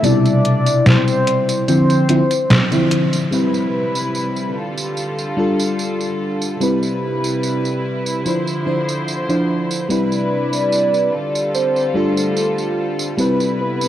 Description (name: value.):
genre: vaporwave.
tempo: 73 BPM.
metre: 4/4.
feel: straight.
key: C major.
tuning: A4 = 439 Hz.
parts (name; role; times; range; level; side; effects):
warm velvety synth lead; melody; 0.0-2.9, 9.9-13.9 s; A4 to D5; -20 LUFS; equal; chorus, tremolo, tape echo.
FM electric piano with soft pad layer; accompaniment; 0.0-13.9 s; B2 to C5; -18 LUFS; left 1 dB; wide subtle chorus, tape echo.
detuned 8-bit digital drum machine; drums; 0.0-13.9 s; hi-hat, snare drum, tambourine; -20 LUFS; right 1 dB; overdrive.
warm studio string section; sustained chords; 3.3-13.9 s; C3 to C5; -23 LUFS; equal; none.
room: moderate huge ambient reverb, RT60 6.3 s.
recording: cassette tape.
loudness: -15 LUFS.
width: side -11 dB against mid.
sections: 0.0-3.3 A section; 3.3-13.9 B section.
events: band accent 2.5-2.9.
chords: 0.0 Cmaj7; 1.7 Dm9; 3.3 Cmaj7; 4.6 F69; 6.6 Cmaj7; 8.3 Dm9; 9.9 Cmaj7; 11.1 F69; 13.2 Cmaj7.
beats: | 0.04 0.86 1.68 2.50 | 3.33 4.15 4.97 5.79 | 6.61 7.43 8.26 9.08 | 9.90 10.72 11.54 12.37 | 13.19.